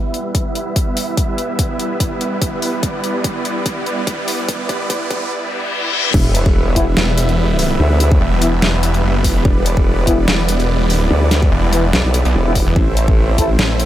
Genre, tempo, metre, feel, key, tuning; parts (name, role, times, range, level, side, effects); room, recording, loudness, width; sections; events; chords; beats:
heavy wobble dubstep; 145 BPM; 4/4; swing 54% on 16ths, half-time; E minor; A4 = 442 Hz
supersaw chords; sustained chords; 0.0-13.9 s; G3 to E5; -21 LUFS; right 2 dB; sidechain pumping, low-pass filter
riser, reverse cymbal and sub drop; sound effects; 1.5-7.8 s; -25 LUFS; left 2 dB
dubstep drum kit; drums; 0.1-13.9 s; crash cymbal, hi-hat, snare drum; -20 LUFS; left 1 dB; overdrive
electronic kick drum; drums; 0.3-13.5 s; -17 LUFS; equal
formant-sweep wobble bass; bass; 6.1-13.6 s; E1 to D2; -15 LUFS; equal; chorus, overdrive
mellow brass ensemble; stabs; 6.8-13.5 s; E3 to A4; -22 LUFS; left 2 dB; tape echo
snarling distorted saw bass; bass; 7.0-13.9 s; E1 to B1; -16 LUFS; equal; distortion, overdrive
little or no reverb; high-pass filter; -14 LUFS; side -12 dB against mid
0.0-6.1 A section; 6.1-13.9 B section
build-up 0.0-6.1; filter sweep on supersaw synth 0.0-6.1; filter sweep 0.0-6.1; riser 1.5-5.3; drum fill 2.8-5.3; reverse cymbal 5.3-6.1; drop 6.1-13.9; impact 6.1-7.8
0.0 Em; 12.8 Am
0.35 0.76 | 1.18 1.59 2.00 2.42 | 2.83 3.24 3.66 4.07 | 4.49 4.90 5.31 5.73 | 6.14 6.55 6.97 7.38 | 7.79 8.21 8.62 9.04 | 9.45 9.86 10.28 10.69 | 11.11 11.52 11.93 12.35 | 12.76 13.18 13.59